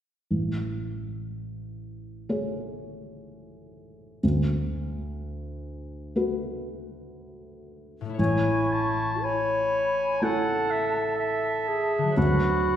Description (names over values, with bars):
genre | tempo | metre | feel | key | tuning
cinematic | 61 BPM | 4/4 | rubato | A major | A4 = 440 Hz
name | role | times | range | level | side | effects
felt-muted upright piano | accompaniment | 0.3-12.8 s | A1 to C#5 | -28 LUFS | equal | none
concert harp | arpeggios | 8.0-12.8 s | A2 to C#5 | -32 LUFS | left 4 dB | none
clear oboe | second line | 8.2-12.8 s | E5 to A5 | -30 LUFS | right 1 dB | none
mellow clarinet | second line | 8.2-12.8 s | E4 to C#5 | -26 LUFS | equal | none
mellow hollow silver concert flute | second line | 8.2-12.8 s | A5 to C#6 | -31 LUFS | left 2 dB | none
room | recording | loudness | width
wet scoring stage reverb, RT60 1.8 s | heard from further back in the room | -24 LUFS | side -10 dB against mid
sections
0.3-8.2 A section; 8.2-12.8 B section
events
none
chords
0.3 Amaj7; 4.2 D6; 8.2 Amaj7; 12.2 D6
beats
| 0.31 1.31 2.29 3.27 | 4.23 5.18 6.15 7.14 | 8.18 9.23 10.22 11.19 | 12.17